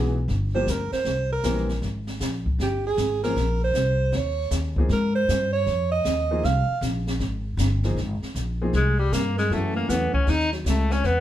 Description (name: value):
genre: jazz, small-group swing and bop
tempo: 156 BPM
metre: 4/4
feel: swing 65% on 8ths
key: Ab major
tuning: A4 = 440 Hz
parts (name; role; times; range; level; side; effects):
- warm alto saxophone; second line; 0.0-11.2 s; Gb3 to F5; -26 LUFS; right 4 dB; none
- warm upright piano; accompaniment; 0.0-10.1 s; E3 to Bb4; -29 LUFS; left 1 dB; none
- upright bass; bass; 0.0-11.2 s; G1 to Ab2; -25 LUFS; equal; none
- jazz brush drum kit; drums; 0.3-11.2 s; brushed snare drum, hi-hat, kick drum, snare drum; -29 LUFS; equal; none
- clear tenor saxophone; melody; 8.8-11.2 s; Gb3 to Eb4; -25 LUFS; left 2 dB; none
room: moderate studio reverb, RT60 0.8 s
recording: band playing live in one room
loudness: -21 LUFS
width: side -12 dB against mid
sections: 0.0-8.0 A section; 8.0-11.2 B section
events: alto saxophone solo 0.0-8.0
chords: 0.3 Gm7; 1.1 C7; 1.8 Fmadd9 (rootless); 3.4 Bbsus2; 4.1 Eb5; 4.9 Ab69; 8.0 Abadd9; 9.5 Gbm7; 10.3 Gbm6